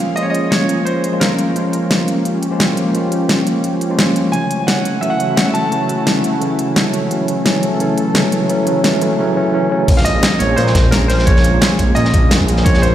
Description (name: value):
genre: liquid drum and bass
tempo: 173 BPM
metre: 4/4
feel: straight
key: unclear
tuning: A4 = 437 Hz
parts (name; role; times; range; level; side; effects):
- bright concert grand piano; melody; 0.0-1.5, 4.3-12.9 s; Bb4 to A5; -20 LUFS; right 1 dB; tape echo
- tine electric piano; accompaniment; 0.0-12.9 s; Db3 to F4; -17 LUFS; equal; medium stereo tremolo, ping-pong delay
- lush unison pad; sustained chords; 0.0-12.9 s; A3 to A4; -22 LUFS; equal; chorus, sidechain pumping
- pop drum kit; drums; 0.0-12.9 s; crash cymbal, hi-hat, snare drum; -19 LUFS; equal; none
- dark detuned saw bass; bass; 9.9-12.9 s; Bb1 to Bb2; -16 LUFS; equal; none
- crunchy breakbeat drum kit; drums; 9.9-12.9 s; hi-hat, snare drum; -25 LUFS; equal; high-pass filter on hats, high-pass filter on snare, high-pass filter on room
- electronic kick drum; drums; 9.9-12.7 s; none; -14 LUFS; equal; none
room: moderate huge ambient reverb, RT60 4.2 s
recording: played on a big sound system in a bare room, large studio reverb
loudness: -13 LUFS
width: side -11 dB against mid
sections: 0.0-9.9 A section; 9.9-12.9 B section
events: build-up 0.0-9.9; drop 9.9-12.9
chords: 0.0 Bbm7; 4.3 Gbm7; 9.9 Bbm7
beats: | 0.17 0.52 0.87 1.21 | 1.56 1.91 2.25 2.60 | 2.95 3.29 3.64 3.99 | 4.33 4.68 5.03 5.38 | 5.72 6.07 6.42 6.76 | 7.11 7.46 7.80 8.15 | 8.50 8.84 9.19 9.54 | 9.88 10.23 10.58 10.92 | 11.27 11.62 11.96 12.31 | 12.66